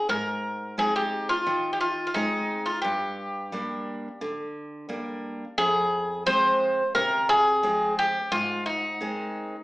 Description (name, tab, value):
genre	greek folk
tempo	88 BPM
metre	4/4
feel	straight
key	unclear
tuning	A4 = 445 Hz
part	Greek bouzouki	melody	0.0-9.6 s	Eb4 to C5	-24 LUFS	equal	none
part	picked steel-string acoustic guitar	accompaniment	0.1-9.6 s	F2 to Eb4	-32 LUFS	equal	none
room	wet large studio reverb, RT60 0.8 s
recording	band playing live in one room, small speaker sound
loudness	-23 LUFS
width	side -20 dB against mid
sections	0.0-5.6 A section; 5.6-9.6 B section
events	none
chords	0.1 Ab; 2.8 Gm; 5.6 Fm; 8.3 Ab